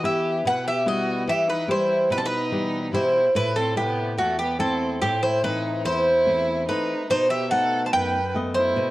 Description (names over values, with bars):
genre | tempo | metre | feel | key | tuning
greek folk, Greek bouzouki band | 144 BPM (eighths) | 9/8 | straight | A dorian sharp4 | A4 = 441 Hz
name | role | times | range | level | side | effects
Greek bouzouki | melody | 0.0-8.9 s | F#4 to A5 | -22 LUFS | equal | none
rich violin | second line | 0.0-8.9 s | A3 to C5 | -29 LUFS | right 1 dB | none
flamenco guitar | accompaniment | 0.0-8.9 s | E2 to D#5 | -27 LUFS | left 1 dB | none
room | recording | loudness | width
light reverb | worn, warbling old tape, cassette tape, warbly pitch drift | -20 LUFS | side -17 dB against mid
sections
0.0-8.9 A section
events
none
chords
0.0 Em; 3.4 Am; 7.1 B7